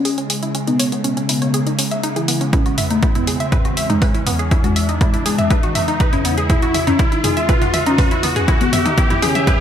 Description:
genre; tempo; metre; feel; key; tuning
melodic techno; 121 BPM; 4/4; straight; unclear; A4 = 440 Hz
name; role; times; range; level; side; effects
soft octave-layered synth lead; melody; 0.0-9.5 s; G#3 to E4; -22 LUFS; left 2 dB; chorus, phaser, sidechain pumping, digital delay
lush unison pad; sustained chords; 0.0-9.6 s; E2 to E4; -25 LUFS; equal; chorus, sidechain pumping
bowed-like drone; drone; 0.0-9.6 s; C#3 to G#3; -30 LUFS; right 2 dB; none
riser and reverse cymbal; sound effects; 0.0-9.6 s; none; -24 LUFS; right 1 dB; none
analog pluck; arpeggios; 0.1-9.6 s; B3 to E5; -22 LUFS; equal; chorus, sidechain pumping, ping-pong delay
house drum kit; drums; 0.1-9.6 s; hi-hat, toms; -22 LUFS; equal; sidechain pumping on hats, studio reverb, sidechain pumping on toms
electronic kick drum; drums; 2.5-9.6 s; none; -16 LUFS; equal; studio reverb
room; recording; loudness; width
moderate plate reverb, RT60 1.8 s; bright 1980s-style digital production; -14 LUFS; side -9 dB against mid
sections
0.0-9.6 A section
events
build-up 0.0-9.6; riser 0.0-9.6; filter sweep on synth pluck 0.0-9.6; filter sweep on soft synth lead 0.0-9.6; drum fill 2.5-9.6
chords
0.0 C#m; 2.5 E6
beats
0.05 | 0.55 1.04 1.54 2.04 | 2.53 3.03 3.52 4.02 | 4.51 5.01 5.51 6.00 | 6.50 6.99 7.49 7.99 | 8.48 8.98 9.47

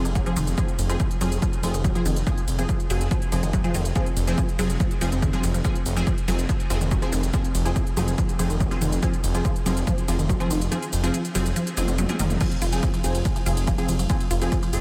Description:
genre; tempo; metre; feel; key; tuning
driving peak-time techno; 142 BPM; 4/4; straight; F minor; A4 = 439 Hz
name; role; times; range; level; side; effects
rave stab; stabs; 0.0-14.8 s; F3 to Ab4; -33 LUFS; equal; chorus, built-in reverb, sidechain pumping, diffuse ambient delay
detuned saw bass; bass; 0.0-14.8 s; F1; -27 LUFS; equal; sidechain pumping
resonant blip pluck; riff; 0.1-14.7 s; Eb3 to F4; -32 LUFS; equal; chorus, phaser, sidechain pumping, diffuse ambient delay
techno drum kit; drums; 0.1-14.8 s; crash cymbal, hi-hat, ride cymbal, shaker, toms; -36 LUFS; equal; sidechain pumping on hats, sidechain pumping on perc, sidechain pumping on cymbals, sidechain pumping on toms
electronic kick drum; drums; 0.2-14.6 s; none; -27 LUFS; equal; none
room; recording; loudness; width
light reverb; none; -24 LUFS; mono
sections
0.0-12.4 A section; 12.4-14.8 A section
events
drop 0.0-12.4, 12.4-14.8; kick drops out 10.7-12.4; drum fill 11.8-12.4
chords
0.0 Fm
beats
0.15 | 0.58 1.00 1.42 1.84 | 2.27 2.69 3.11 3.53 | 3.96 4.38 4.80 5.22 | 5.65 6.07 6.49 6.91 | 7.34 7.76 8.18 8.60 | 9.03 9.45 9.87 10.29 | 10.72 11.14 11.56 11.98 | 12.41 12.83 13.25 13.68 | 14.10 14.52

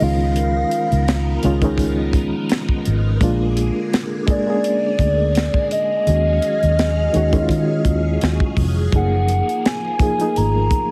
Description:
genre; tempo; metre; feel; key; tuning
R&B, neo-soul; 84 BPM; 4/4; swing 54% on 16ths; F# major; A4 = 440 Hz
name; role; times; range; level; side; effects
hollow clarinet-like synth lead; melody; 0.0-10.9 s; D5 to A#5; -24 LUFS; equal; chorus
bright reed electric piano; accompaniment; 0.0-10.9 s; D#3 to G#4; -24 LUFS; equal; fast tremolo
phased string machine; sustained chords; 0.0-10.9 s; D3 to E#5; -31 LUFS; equal; ensemble chorus, phaser
vintage muted fingered electric bass; bass; 0.0-10.7 s; E#1 to D#3; -21 LUFS; equal; none
tight funk drum kit; drums; 0.0-10.9 s; finger snaps, hi-hat, kick drum, snare drum; -23 LUFS; equal; none
room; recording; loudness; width
light reverb, small room ambience; heavily compressed radio sound, multiband compression; -18 LUFS; mono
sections
0.0-10.9 A section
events
none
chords
0.0 C#13; 3.2 A#7; 6.1 D#m11; 8.9 F#maj9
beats
| 0.35 1.06 1.78 2.49 | 3.21 3.92 4.63 5.35 | 6.06 6.78 7.49 8.21 | 8.92 9.63 10.35

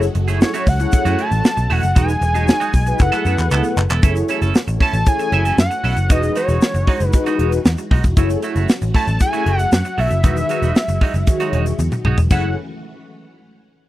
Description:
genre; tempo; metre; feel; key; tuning
early-eighties boogie funk; 116 BPM; 4/4; straight; F# dorian; A4 = 438 Hz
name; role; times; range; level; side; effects
mellow synth brass; accompaniment; 0.0-12.5 s; D#3 to E5; -22 LUFS; left 2 dB; chorus, phaser
string machine, full ensemble; sustained chords; 0.0-12.5 s; D#3 to G#5; -29 LUFS; equal; ensemble chorus
clean electric guitar; riff; 0.0-12.5 s; G#3 to A4; -24 LUFS; right 6 dB; lush chorus
vintage muted picked electric bass; bass; 0.0-12.5 s; E1 to F#2; -18 LUFS; equal; none
tight funk drum kit; drums; 0.0-12.4 s; crash cymbal, handclaps, hi-hat, kick drum, snare drum, toms; -15 LUFS; equal; none
tube shaker; percussion; 0.0-12.5 s; none; -39 LUFS; left 8 dB; none
fat analog lead; melody; 0.4-12.6 s; C#5 to A5; -22 LUFS; equal; none
room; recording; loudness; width
little or no reverb; dry, close 1970s-style studio recording; -14 LUFS; side -15 dB against mid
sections
0.0-4.0 A section; 4.0-12.3 B section; 12.3-13.9 C section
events
drum fill 3.0-4.0, 11.8-12.3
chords
0.0 F#m7; 2.0 Emaj9; 3.0 F#m11; 4.0 F#m7; 6.1 Emaj9; 8.2 F#m7; 10.2 Emaj9; 12.3 F#m7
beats
0.41 0.93 1.45 | 1.96 2.48 3.00 3.51 | 4.03 4.55 5.07 5.58 | 6.10 6.62 7.13 7.65 | 8.17 8.69 9.20 9.72 | 10.24 10.76 11.27 11.79 | 12.31

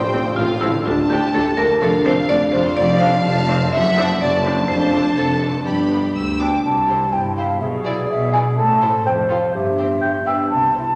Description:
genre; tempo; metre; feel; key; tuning
cinematic, playful, whimsical film cue; 124 BPM; 2/4; straight; C major; A4 = 440 Hz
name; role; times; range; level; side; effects
clear chamber violin section; melody; 0.0-10.9 s; B4 to E6; -31 LUFS; equal; none
marimba with medium hard mallets; melody; 0.0-6.4 s; E4 to F5; -23 LUFS; equal; none
clear chamber violin section; second line; 0.0-10.9 s; E4 to F5; -30 LUFS; equal; none
concert harp; arpeggios; 0.0-11.0 s; F2 to F5; -26 LUFS; equal; none
rich chamber viola section; accompaniment; 0.1-10.9 s; F3 to F4; -30 LUFS; equal; none
mellow tuba; bass; 0.1-6.6 s; F1 to D2; -28 LUFS; equal; none
rich chamber double bass section; bass; 0.1-10.9 s; F1 to D2; -30 LUFS; equal; none
warm symphonic cello section; bass; 0.1-10.9 s; C2 to C3; -27 LUFS; equal; none
mellow hollow concert flute; second line; 6.4-11.0 s; D5 to A5; -22 LUFS; equal; none
dark clarinet; second line; 7.1-10.3 s; E4 to C5; -26 LUFS; equal; none
warm oboe; second line; 10.0-10.4 s; E5 to G5; -26 LUFS; equal; none
room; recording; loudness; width
wet scoring stage reverb, RT60 1.6 s; none; -18 LUFS; mono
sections
0.0-6.6 A section; 6.6-11.0 B section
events
none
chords
0.0 F/A; 0.9 Dm; 1.8 Dm/F; 2.8 Dm7/F; 3.7 D7/F#; 4.7 Dm7/F; 5.7 G; 6.6 C; 7.6 E7/B; 8.6 Am; 9.1 F; 9.5 C/G; 10.0 G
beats
0.37 | 0.86 1.34 | 1.81 2.29 | 2.77 3.25 | 3.73 4.21 | 4.69 5.17 | 5.67 6.16 | 6.64 7.13 | 7.61 8.09 | 8.57 9.05 | 9.54 10.02 | 10.51

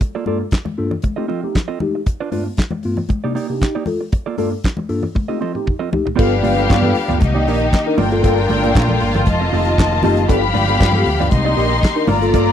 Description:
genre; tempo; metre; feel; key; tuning
disco; 117 BPM; 4/4; straight; unclear; A4 = 440 Hz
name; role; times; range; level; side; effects
mellow electric guitar; accompaniment; 0.0-12.5 s; Bb3 to Eb5; -24 LUFS; right 9 dB; none
damped 70s drum kit; drums; 0.0-12.5 s; crash cymbal, handclaps, hi-hat, kick drum, snare drum, toms; -16 LUFS; equal; none
mellow tine electric piano; accompaniment; 0.3-12.5 s; G2 to Bb4; -21 LUFS; left 2 dB; phaser
congas; percussion; 0.3-12.5 s; none; -26 LUFS; left 4 dB; none
warm studio string section; second line; 6.2-12.5 s; Bb3 to C6; -19 LUFS; left 4 dB; none
rich studio string section; sustained chords; 6.2-12.5 s; Bb2 to G4; -22 LUFS; equal; none
picked electric bass; bass; 6.2-12.5 s; F1 to G2; -19 LUFS; equal; none
room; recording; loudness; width
studio reverb; dry, close 1970s-style studio recording; -15 LUFS; side -9 dB against mid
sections
0.0-6.2 A section; 6.2-12.5 B section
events
drum fill 5.2-6.2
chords
0.0 Gm9; 1.0 F7; 2.1 G7; 3.1 Cm9; 3.9 Gm9; 5.2 F7; 6.2 G7; 7.2 Cm9; 8.0 Gm9; 9.3 F7; 10.3 G7; 11.3 Cm9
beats
| 0.01 0.53 1.04 1.56 | 2.07 2.59 3.10 3.62 | 4.13 4.64 5.16 5.67 | 6.19 6.70 7.21 7.73 | 8.24 8.75 9.27 9.78 | 10.29 10.80 11.32 11.83 | 12.34

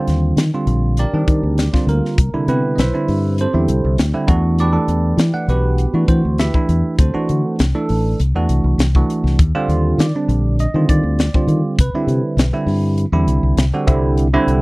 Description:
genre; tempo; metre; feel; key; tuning
electric jazz fusion; 100 BPM; 4/4; straight; C lydian; A4 = 441 Hz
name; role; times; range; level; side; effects
bell-like tine electric piano; accompaniment; 0.0-14.6 s; C3 to F#5; -18 LUFS; right 2 dB; phaser
fingered electric bass; bass; 0.1-14.6 s; A1 to E3; -16 LUFS; equal; none
crisp fusion drum kit; drums; 0.1-14.6 s; hi-hat, kick drum, snare drum; -17 LUFS; left 1 dB; none
room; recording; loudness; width
little or no reverb; dry, close 1970s-style studio recording; -14 LUFS; side -23 dB against mid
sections
0.0-14.6 A section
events
none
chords
0.0 Ebmaj9; 2.2 Cmaj13; 4.3 Em9; 7.0 D9; 8.2 C69; 9.4 Ebmaj9; 11.8 Cmaj9; 13.9 Cadd9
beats
0.37 0.97 1.58 | 2.18 2.78 3.38 3.98 | 4.58 5.18 5.78 6.38 | 6.98 7.58 8.18 8.78 | 9.38 9.98 10.58 11.18 | 11.78 12.38 12.98 13.58 | 14.18

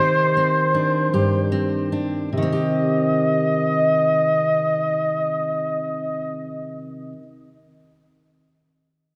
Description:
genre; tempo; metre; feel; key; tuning
folk; 72-81 BPM; 4/4; straight; C minor; A4 = 445 Hz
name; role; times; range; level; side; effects
warm trumpet; melody; 0.0-6.4 s; C5 to Eb5; -23 LUFS; equal; slapback echo
fingerpicked steel-string acoustic guitar; accompaniment; 0.0-7.3 s; G2 to G4; -25 LUFS; equal; none
room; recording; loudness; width
wet lush hall reverb, RT60 2.8 s; big arena sound; -21 LUFS; mono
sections
0.0-2.3 A section; 2.3-5.7 B section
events
slowing down 0.0-2.3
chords
0.0 Cmadd9; 2.3 Cm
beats
0.73 1.52 | 2.34 3.17 4.01 4.85

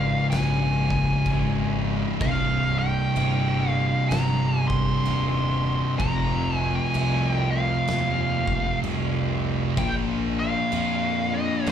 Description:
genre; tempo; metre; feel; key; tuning
stoner and doom metal; 63 BPM; 4/4; swing 63% on 8ths; C phrygian; A4 = 439 Hz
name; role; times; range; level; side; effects
fuzz lead guitar; melody; 0.0-11.7 s; Eb5 to C6; -28 LUFS; equal; wah, distortion, ping-pong delay
thick fuzz guitar; riff; 0.0-11.7 s; C2 to Bb3; -26 LUFS; left 4 dB; distortion
thick fuzz guitar; riff; 0.0-11.7 s; C2 to Bb3; -28 LUFS; right 8 dB; distortion
fuzz fingered electric bass; bass; 0.0-11.7 s; C1 to F2; -31 LUFS; equal; overdrive
oversized low-tuned drum kit; drums; 0.3-11.7 s; crash cymbal, kick drum, snare drum; -31 LUFS; right 1 dB; none
room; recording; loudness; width
small room ambience; live gig heard through the venue's PA, club reverb; -21 LUFS; side -9 dB against mid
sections
0.0-11.7 A section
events
none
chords
0.0 Db5; 2.2 Cm; 6.0 F5; 9.8 Bb5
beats
0.31 1.26 | 2.21 3.15 4.10 5.05 | 5.99 6.94 7.88 8.83 | 9.78 10.72 11.66

